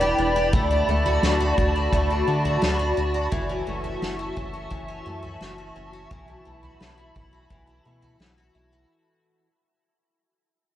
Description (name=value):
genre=dream pop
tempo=86 BPM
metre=4/4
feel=straight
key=unclear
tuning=A4 = 440 Hz
part: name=hollow soft pad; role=sustained chords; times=0.0-8.9 s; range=E4 to C#6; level=-25 LUFS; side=equal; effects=ensemble chorus, shimmer reverb
part: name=picked twelve-string acoustic guitar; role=arpeggios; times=0.0-9.5 s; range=E3 to G4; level=-30 LUFS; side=left 2 dB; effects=lush chorus, ping-pong delay, shimmer reverb
part: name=round analog bass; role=bass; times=0.0-8.9 s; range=E1 to D3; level=-28 LUFS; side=equal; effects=none
part: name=soft-mallet drum kit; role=drums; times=0.5-8.4 s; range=kick drum, snare drum, toms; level=-28 LUFS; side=equal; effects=none
room=moderate huge ambient reverb, RT60 7.7 s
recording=worn, warbling old tape, cassette tape, warbly pitch drift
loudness=-20 LUFS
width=side -12 dB against mid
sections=0.0-8.9 A section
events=fade-out 0.0-8.9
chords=0.0 Em7; 0.5 Bm7/D; 3.3 F#m7; 6.1 B7sus4